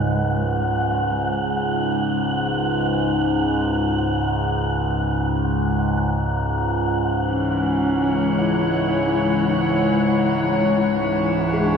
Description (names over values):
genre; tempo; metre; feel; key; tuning
dark ambient drone; 55 BPM; 4/4; straight; C# minor; A4 = 440 Hz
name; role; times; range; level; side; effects
gamelan-type bronze metallophone; arpeggios; 0.0-4.2, 11.5-11.8 s; G#3 to G#4; -33 LUFS; left 2 dB; none
overtone-sweeping drone; drone; 0.0-11.8 s; C#2 to G#2; -21 LUFS; equal; chorus, built-in reverb, phaser
wind-like tuned noise texture; texture; 0.0-11.8 s; F#5; -27 LUFS; right 2 dB; built-in reverb, shimmer reverb
mellow duduk; melody; 7.3-11.8 s; C#4 to E4; -24 LUFS; left 2 dB; shimmer reverb, tape echo
warm studio cello section; sustained chords; 7.3-11.8 s; E3 to C#5; -21 LUFS; left 2 dB; shimmer reverb
room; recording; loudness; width
wet echo chamber reverb, RT60 2.2 s; echo-heavy mix; -18 LUFS; side -6 dB against mid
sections
0.0-11.8 A section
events
fade-in on duduk 0.0-11.8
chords
0.0 C#m